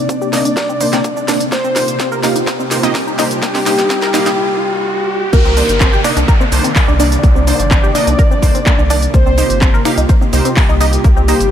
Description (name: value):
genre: progressive house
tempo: 126 BPM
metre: 4/4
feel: straight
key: C minor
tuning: A4 = 440 Hz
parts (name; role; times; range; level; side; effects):
- soft octave-layered synth lead; melody; 0.0-11.5 s; G4 to D5; -19 LUFS; left 1 dB; chorus, sidechain pumping, tape echo
- soft supersaw; second line; 0.0-11.5 s; G4 to D5; -26 LUFS; equal; none
- airy breathy pad; sustained chords; 0.0-11.5 s; C3 to D5; -22 LUFS; left 2 dB; chorus, sidechain pumping
- riser and downlifter; sound effects; 0.2-9.1 s; none; -23 LUFS; right 1 dB; none
- tight sequenced synth; arpeggios; 0.1-11.3 s; Bb3 to C6; -20 LUFS; equal; chorus, vintage 12-bit sampler grit, sidechain pumping, tape echo
- electronic kick drum; drums; 0.1-11.1 s; none; -12 LUFS; equal; high-pass filter on kick, small room ambience
- house drum kit; drums; 0.1-11.5 s; crash cymbal, finger snaps, handclaps, hi-hat, shaker, snare drum; -20 LUFS; equal; high-pass filter on hats, small room ambience, high-pass filter on snare, high-pass filter on perc, high-pass filter on cymbals
- wide unison pluck; stabs; 0.3-11.3 s; Bb3 to F5; -21 LUFS; right 3 dB; sidechain pumping, tape echo
- round analog bass; bass; 5.3-11.5 s; G1 to C2; -16 LUFS; equal; tube saturation, sidechain pumping
room: light reverb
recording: none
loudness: -10 LUFS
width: side -9 dB against mid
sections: 0.0-5.3 A section; 5.3-11.5 B section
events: build-up 0.0-5.3; drum fill 0.0-4.4; filter sweep on synth pluck 0.0-5.3; filter sweep on analog synth pad 0.0-5.3; riser 0.2-5.3; break 4.4-5.3; drop 5.3-11.5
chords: 0.0 Cm9; 1.5 Eb6; 5.3 Cm9; 9.1 Eb6